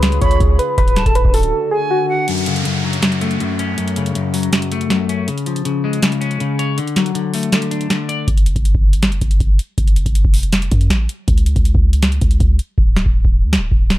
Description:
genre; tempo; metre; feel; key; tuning
hip hop, trap; 160 BPM; 4/4; half-time; F# harmonic minor; A4 = 443 Hz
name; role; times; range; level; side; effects
soft electric-piano-like synth keys; melody; 0.0-2.3 s; F#4 to C#5; -19 LUFS; equal; chorus, tremolo, ping-pong delay
dark analog pad; sustained chords; 0.0-2.3 s; C#3 to A4; -26 LUFS; right 1 dB; chorus, phaser
warm 808-style bass; bass; 0.0-1.5, 8.3-14.0 s; D1 to F#2; -16 LUFS; equal; none
booming analog drum machine; drums; 0.0-14.0 s; hi-hat, kick drum, snare drum; -15 LUFS; equal; none
silver concert flute; second line; 0.2-2.3 s; F#5 to B5; -24 LUFS; right 4 dB; ping-pong delay
clean electric guitar; accompaniment; 2.3-8.3 s; F#2 to D5; -18 LUFS; left 4 dB; wide subtle chorus
downlifter; sound effects; 2.3-5.3 s; none; -26 LUFS; equal; none
room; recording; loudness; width
little or no reverb; dark, warm production; -14 LUFS; side -15 dB against mid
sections
0.0-2.3 A section; 2.3-14.0 B section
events
break 1.5-2.3, 2.3-8.3; kick muted 7.5-8.3; hi-hats muted 12.8-14.0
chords
0.0 C#; 0.8 D; 2.3 F#m; 5.3 C#; 6.8 D; 8.3 N.C.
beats
0.03 0.40 | 0.78 1.15 1.53 1.90 | 2.28 2.65 3.03 3.40 | 3.78 4.15 4.53 4.90 | 5.28 5.65 6.03 6.40 | 6.78 7.15 7.53 7.90 | 8.28 8.65 9.03 9.40 | 9.78 10.15 10.53 10.90 | 11.28 11.65 12.03 12.40 | 12.78 13.15 13.53 13.90

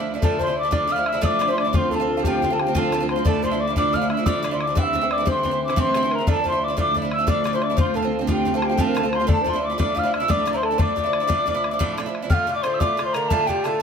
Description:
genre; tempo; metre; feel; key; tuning
celtic folk, Celtic slip jig; 119 BPM (dotted quarters); 9/8; straight; D minor; A4 = 441 Hz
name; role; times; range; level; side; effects
Irish bouzouki; accompaniment; 0.0-13.8 s; G2 to F4; -26 LUFS; right 5 dB; none
rich studio string section; drone; 0.0-12.3 s; D2 to D3; -28 LUFS; right 1 dB; none
mellow hollow wooden whistle; melody; 0.2-13.8 s; G5 to F6; -24 LUFS; equal; slapback echo, plate reverb
mellow wooden flute; second line; 0.2-13.8 s; G4 to G5; -26 LUFS; left 5 dB; none
bodhran; percussion; 0.2-13.7 s; none; -23 LUFS; left 2 dB; none
room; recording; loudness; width
moderate studio reverb, RT60 0.5 s; none; -19 LUFS; side -7 dB against mid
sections
0.2-12.3 A section; 12.3-13.8 B section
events
none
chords
0.2 Dmadd9; 1.7 F; 3.2 Dmadd9; 4.8 C; 6.3 Dmadd9; 7.8 F; 9.3 Dmadd9; 12.3 Dm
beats
| 0.23 0.73 1.24 | 1.74 2.24 2.75 | 3.25 3.75 4.25 | 4.76 5.26 5.76 | 6.27 6.77 7.27 | 7.78 8.28 8.78 | 9.28 9.79 10.29 | 10.79 11.30 11.80 | 12.30 12.81 13.31 | 13.81

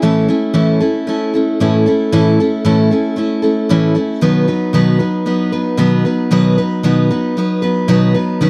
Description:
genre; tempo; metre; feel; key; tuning
rock; 114 BPM; 4/4; straight; unclear; A4 = 435 Hz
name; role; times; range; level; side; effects
picked steel-string acoustic guitar; solo; 0.0-8.5 s; A2 to B4; -14 LUFS; equal; none
room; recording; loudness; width
wet booth ambience, RT60 0.2 s; dry, close 1970s-style studio recording; -14 LUFS; mono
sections
0.0-8.4 A section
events
none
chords
0.0 A; 4.2 B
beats
| 0.01 0.54 1.06 1.59 | 2.12 2.64 3.17 3.69 | 4.22 4.74 5.26 5.79 | 6.31 6.84 7.36 7.88 | 8.41

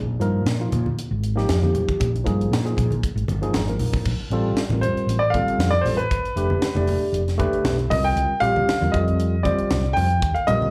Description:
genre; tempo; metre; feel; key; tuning
electric jazz fusion; 117 BPM; 4/4; swing 53% on 16ths; Bb major from 4.1 s; A4 = 443 Hz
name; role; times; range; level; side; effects
tine electric piano; accompaniment; 0.0-10.7 s; F3 to Bb5; -28 LUFS; equal; slapback echo
woody fretless electric bass; bass; 0.0-10.7 s; F1 to Bb2; -25 LUFS; equal; none
crisp fusion drum kit; drums; 0.2-10.6 s; crash cymbal, hi-hat, kick drum, snare drum; -30 LUFS; equal; none
congas; percussion; 0.7-10.7 s; none; -33 LUFS; equal; none
clear baby grand piano; melody; 4.8-10.7 s; Cb5 to G5; -25 LUFS; equal; slapback echo
room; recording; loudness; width
light reverb, small room ambience; live gig heard through the venue's PA, club reverb; -22 LUFS; mono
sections
0.0-4.1 A section; 4.1-10.7 B section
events
tine electric piano fill 3.3-4.1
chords
0.0 Bb7sus4; 4.1 Bbsus2; 6.1 G7; 7.9 C5; 8.9 F13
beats
0.47 0.98 1.49 | 2.00 2.51 3.03 3.54 | 4.05 4.57 5.08 5.59 | 6.11 6.62 7.13 7.65 | 8.16 8.67 9.19 9.70 | 10.22

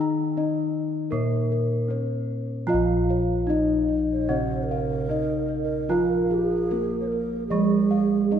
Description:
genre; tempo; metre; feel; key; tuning
Javanese gamelan; 75 BPM; 4/4; straight; Bb slendro; A4 = 439 Hz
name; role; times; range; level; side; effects
gamelan-type bronze metallophone; melody; 0.0-8.4 s; Ab3-25c to Bb4; -25 LUFS; left 1 dB; none
gamelan-type bronze metallophone; accompaniment; 0.0-8.4 s; Db3-45c to Bb3; -29 LUFS; right 4 dB; none
gamelan-type bossed gongs; arpeggios; 0.0-8.4 s; Ab4-25c to Bb5; -33 LUFS; left 5 dB; none
gamelan-type bossed gongs; bass; 0.0-8.4 s; Bb1 to F4; -28 LUFS; right 1 dB; none
gamelan-type bronze metallophone; arpeggios; 2.7-8.4 s; Ab4-25c to F5; -35 LUFS; right 3 dB; none
breathy mellow bass bansuri; second line; 4.1-8.4 s; Ab4-28c to Db5-42c; -31 LUFS; right 6 dB; none
room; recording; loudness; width
wet concert hall reverb, RT60 2.5 s; minimal, uncompressed stereo recording; -22 LUFS; side -8 dB against mid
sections
0.0-2.7 A section; 2.7-8.4 B section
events
none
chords
none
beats
0.37 1.12 1.90 | 2.69 3.49 4.30 5.10 | 5.91 6.71 7.51 8.32

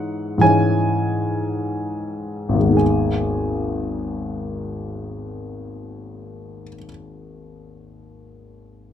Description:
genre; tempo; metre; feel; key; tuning
classical, romantic nocturne for solo piano; 22-31 BPM (dotted quarters); 6/8; rubato; G# minor; A4 = 441 Hz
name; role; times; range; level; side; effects
clear grand piano; solo; 0.0-8.9 s; G#1 to G#5; -20 LUFS; left 1 dB; none
room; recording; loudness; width
little or no reverb; close, detailed microphones; -19 LUFS; side -9 dB against mid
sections
0.0-2.8 A section; 2.8-7.0 B section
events
slowing down 0.0-2.8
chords
0.0 C#m/G#; 2.8 G#m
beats
0.44 | 2.80 4.94

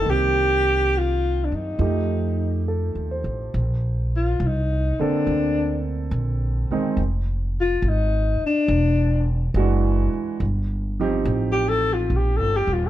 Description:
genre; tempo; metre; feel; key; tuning
jazz ballad; 70 BPM; 4/4; swing 69% on 8ths; Bb major; A4 = 442 Hz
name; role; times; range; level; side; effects
breathy alto saxophone; melody; 0.0-12.9 s; D4 to A4; -22 LUFS; left 2 dB; none
warm concert grand piano; accompaniment; 0.0-12.9 s; D3 to C5; -26 LUFS; right 5 dB; none
upright bass; bass; 0.0-12.9 s; Eb1 to Gb2; -22 LUFS; equal; none
room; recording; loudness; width
light reverb; dark, warm production; -20 LUFS; side -13 dB against mid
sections
0.0-3.5 A section; 3.5-12.9 B section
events
alto saxophone solo 3.5-12.9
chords
0.1 Cm7; 1.8 F9; 3.5 Bbmaj9; 7.0 Fm; 8.7 E9; 10.4 Eb69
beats
| 0.06 0.92 1.79 2.66 | 3.54 4.40 5.26 6.12 | 6.98 7.83 8.69 9.55 | 10.40 11.25 12.11

